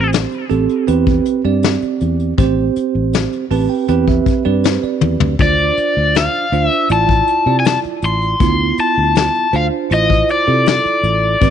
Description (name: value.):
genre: straight-eighth soul blues.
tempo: 80 BPM.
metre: 4/4.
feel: straight.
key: unclear.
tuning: A4 = 438 Hz.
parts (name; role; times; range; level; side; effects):
overdriven electric guitar; melody; 0.0-0.1, 5.4-11.5 s; D5 to C6; -15 LUFS; left 3 dB; none.
bell-like tine electric piano; accompaniment; 0.0-11.5 s; B3 to A5; -18 LUFS; right 10 dB; fast stereo tremolo.
fingered electric bass; bass; 0.0-11.5 s; A1 to C3; -18 LUFS; left 1 dB; none.
vintage brush drum kit; drums; 0.1-11.5 s; hi-hat, kick drum, snare drum, toms; -17 LUFS; left 5 dB; none.
room: small room ambience.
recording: 1960s-style stereo, nothing above 10.4 kHz.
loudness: -13 LUFS.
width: side -9 dB against mid.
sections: 0.0-11.5 A section.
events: tine electric piano fill 3.1-5.4; drum fill 5.0-5.4.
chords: 0.0 Am7; 5.4 Dm7.